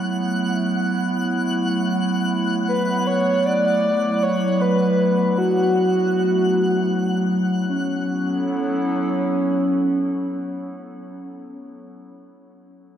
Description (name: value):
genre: ambient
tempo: free time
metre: none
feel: none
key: unclear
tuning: A4 = 440 Hz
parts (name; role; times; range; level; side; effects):
- warbly tape-like pad; sustained chords; 0.0-10.8 s; F#3 to A4; -22 LUFS; equal; chorus, built-in reverb
- twinkling granular texture; texture; 0.0-7.7 s; F#5 to F#6; -30 LUFS; left 1 dB; built-in reverb
- breathy flute-like synth lead; melody; 2.7-10.8 s; C#4 to D5; -21 LUFS; equal; lush chorus, diffuse ambient delay
room: wet cathedral reverb, RT60 6.8 s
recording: none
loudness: -18 LUFS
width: side -10 dB against mid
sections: 0.0-7.7 A section; 7.7-10.0 B section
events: none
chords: 0.0 Esus24/F#